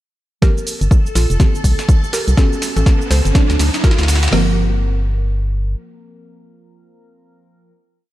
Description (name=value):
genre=deep house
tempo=123 BPM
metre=4/4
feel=swing 60% on 16ths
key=G minor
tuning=A4 = 435 Hz
part: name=mallet-like synth pluck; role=melody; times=0.4-7.7 s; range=C#4 to C5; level=-26 LUFS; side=equal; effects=chorus, analog delay
part: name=deep mellow chord stab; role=stabs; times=0.4-7.7 s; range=Eb3 to Bb4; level=-23 LUFS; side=right 2 dB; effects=chorus, sidechain pumping, tape echo
part: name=deep house drum kit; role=drums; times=0.4-4.5 s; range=hi-hat, kick drum, snare drum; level=-13 LUFS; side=equal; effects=studio reverb
part: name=punchy analog drum machine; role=drums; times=0.4-4.4 s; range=cabasa, hi-hat, snare drum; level=-24 LUFS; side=right 1 dB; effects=overdrive, high-pass filter on snare, studio reverb, high-pass filter on hats, high-pass filter on perc
part: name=riser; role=sound effects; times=2.0-4.3 s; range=none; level=-27 LUFS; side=equal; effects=none
part: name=soft string machine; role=texture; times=0.4-4.3 s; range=A4 to A5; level=-30 LUFS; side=equal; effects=phaser, ensemble chorus
part: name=organ-like FM bass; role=bass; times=0.8-5.7 s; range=F1 to D2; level=-15 LUFS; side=equal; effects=sidechain pumping
room=digital ambience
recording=none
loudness=-13 LUFS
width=side -15 dB against mid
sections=0.4-4.3 build; 4.3-8.1 final chord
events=build-up 0.4-4.3; drum fill 0.4-4.3; filter sweep on synth stab 0.4-4.3; riser 2.0-4.3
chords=0.4 Gm11; 1.4 Cm7; 2.4 A13; 3.4 D7; 4.3 Gm7